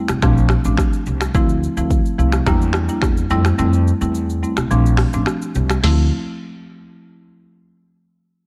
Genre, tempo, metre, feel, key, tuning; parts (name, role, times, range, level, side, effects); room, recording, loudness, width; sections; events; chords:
afrobeats; 107 BPM; 4/4; straight; D minor; A4 = 440 Hz
marimba with medium mallets; accompaniment; 0.0-6.0 s; F3 to E4; -24 LUFS; equal
upright bass; bass; 0.1-6.1 s; A1 to F2; -20 LUFS; equal
afro-pop drum kit; drums; 0.1-6.0 s; crash cymbal, finger snaps, hi-hat, kick drum, rim click, shaker, snare drum, toms; -23 LUFS; equal
little or no reverb; worn, warbling old tape, cassette tape, warbly pitch drift; -17 LUFS; mono
0.0-5.8 A section; 5.8-8.1 B section
kick muted 3.6-5.8
0.2 Bbmaj7; 1.3 Dm7; 2.5 Em7b5; 3.3 Fmaj7; 4.7 Bbmaj7; 5.8 Dm7